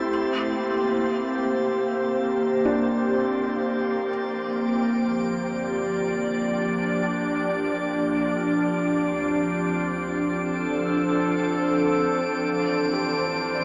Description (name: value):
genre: ambient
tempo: free time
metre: none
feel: none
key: unclear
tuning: A4 = 440 Hz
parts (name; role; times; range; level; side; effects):
- glassy FM pad; sustained chords; 0.0-13.6 s; E3 to D5; -22 LUFS; equal; ensemble chorus, built-in reverb
- felt-muted upright piano; arpeggios; 0.0-13.6 s; D4 to D5; -34 LUFS; equal; diffuse ambient delay
- drifting glass-harmonics texture; texture; 0.0-13.6 s; A6 to D7; -36 LUFS; equal; chorus, built-in reverb
- deep rumbling drone; bass; 4.2-13.6 s; G1 to D2; -48 LUFS; equal; built-in reverb
room: wet shimmer reverb, RT60 6.8 s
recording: small speaker sound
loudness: -21 LUFS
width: side -32 dB against mid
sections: 0.0-4.2 A section; 4.2-13.6 B section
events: fade-in on synth texture 4.2-13.6; filter sweep on ambient pad 4.2-13.6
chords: 0.1 C5; 4.2 Gm7; 8.4 Dm7; 12.4 Am7